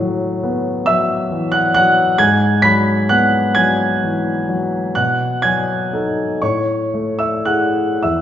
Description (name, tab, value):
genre	classical, impressionist solo piano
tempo	35-47 BPM (dotted quarters)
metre	6/8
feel	rubato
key	unclear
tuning	A4 = 439 Hz
part	warm concert grand piano	solo	0.0-8.2 s	E2 to B6	-14 LUFS	equal	none
room	wet recital hall reverb, RT60 1.4 s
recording	recorded in a church or concert hall, nothing above 7.7 kHz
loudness	-14 LUFS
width	side -10 dB against mid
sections	0.0-8.2 A section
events	none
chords	0.0 Asus2; 2.2 G#m7; 5.0 B6; 6.4 Amaj7